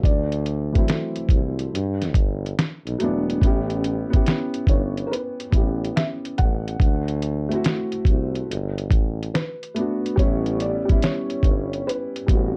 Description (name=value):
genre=lo-fi hip hop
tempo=71 BPM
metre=4/4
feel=swing 66% on 16ths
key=unclear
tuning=A4 = 440 Hz
part: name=felt-muted upright piano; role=melody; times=0.0-12.6 s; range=A4 to F#5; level=-34 LUFS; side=equal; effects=low-pass filter
part: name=dark upright piano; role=accompaniment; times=0.0-12.6 s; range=E3 to G4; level=-28 LUFS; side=equal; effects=cassette tape, low-pass filter
part: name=warm tuba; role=bass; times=0.0-12.6 s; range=E1 to G2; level=-28 LUFS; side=equal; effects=none
part: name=lo-fi sampler-style drum kit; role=drums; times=0.0-12.6 s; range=hi-hat, kick drum, snare drum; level=-22 LUFS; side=equal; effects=none
room=light reverb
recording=dark, warm production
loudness=-23 LUFS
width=mono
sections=0.0-12.6 A section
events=none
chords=0.0 D7; 1.7 Gmaj9; 3.4 A9; 6.8 D7; 8.5 Gmaj9; 10.2 A9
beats=| 0.04 0.88 1.73 2.57 | 3.42 4.26 5.11 5.95 | 6.80 7.64 8.49 9.33 | 10.18 11.02 11.87